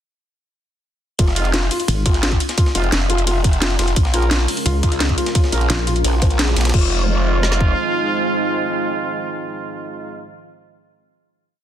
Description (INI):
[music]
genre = dark technical drum and bass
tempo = 173 BPM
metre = 4/4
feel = straight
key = F minor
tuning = A4 = 440 Hz
[part]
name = felt-muted upright piano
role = arpeggios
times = 1.2-6.9 s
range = F4 to C5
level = -25 LUFS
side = left 4 dB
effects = sidechain pumping, ping-pong delay
[part]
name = growl bass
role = bass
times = 1.2-7.7 s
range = F1 to Db2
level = -19 LUFS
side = equal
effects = chorus, tube saturation, sidechain pumping
[part]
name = breakbeat sampler-style drum kit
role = drums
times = 1.2-6.7 s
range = hi-hat, ride cymbal, snare drum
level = -28 LUFS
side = right 2 dB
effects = high-pass filter on cymbals, high-pass filter on snare, high-pass filter on hats
[part]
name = drum and bass drum kit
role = drums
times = 1.2-7.7 s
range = kick drum, snare drum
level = -17 LUFS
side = equal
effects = none
[part]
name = drum and bass drum kit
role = drums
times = 1.2-6.8 s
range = crash cymbal, hi-hat, snare drum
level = -22 LUFS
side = left 1 dB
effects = none
[part]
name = warm brass ensemble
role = stabs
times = 1.4-10.3 s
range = Ab3 to Bb4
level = -24 LUFS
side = right 3 dB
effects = ping-pong delay
[part]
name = pulsing pluck wobble bass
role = bass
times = 1.9-2.0, 4.7-6.0 s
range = Ab1 to Db2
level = -18 LUFS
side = equal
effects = chorus
[part]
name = dark analog pad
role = sustained chords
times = 4.0-10.3 s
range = Ab3 to C5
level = -26 LUFS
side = right 1 dB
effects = chorus, sidechain pumping
[sound]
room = light reverb, digital ambience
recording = dense, heavily limited modern master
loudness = -15 LUFS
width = side -10 dB against mid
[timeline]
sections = 1.2-6.7 drop; 6.7-9.5 final chord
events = drop 1.2-6.7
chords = 1.2 Fm; 4.0 Bbm7; 6.7 Fm7